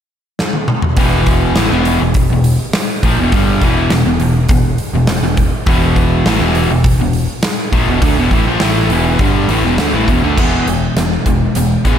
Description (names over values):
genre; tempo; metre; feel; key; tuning
classic rock; 102 BPM; 4/4; straight; unclear; A4 = 441 Hz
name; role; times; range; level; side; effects
huge arena drum kit; drums; 0.4-12.0 s; crash cymbal, hi-hat, kick drum, snare drum, toms; -16 LUFS; equal; none
crunchy overdriven guitar; riff; 1.0-12.0 s; E2 to B3; -17 LUFS; left 8 dB; slapback echo
crunchy overdriven guitar; riff; 1.0-12.0 s; E2 to A3; -17 LUFS; right 7 dB; slapback echo
growling picked electric bass; bass; 1.0-12.0 s; E1 to D2; -18 LUFS; equal; overdrive
room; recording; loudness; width
light reverb, small room reverb; none; -11 LUFS; side -9 dB against mid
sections
1.0-10.4 A section; 10.4-12.0 B section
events
drum fill 0.4-1.0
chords
0.0 N.C.; 1.0 E5; 10.4 E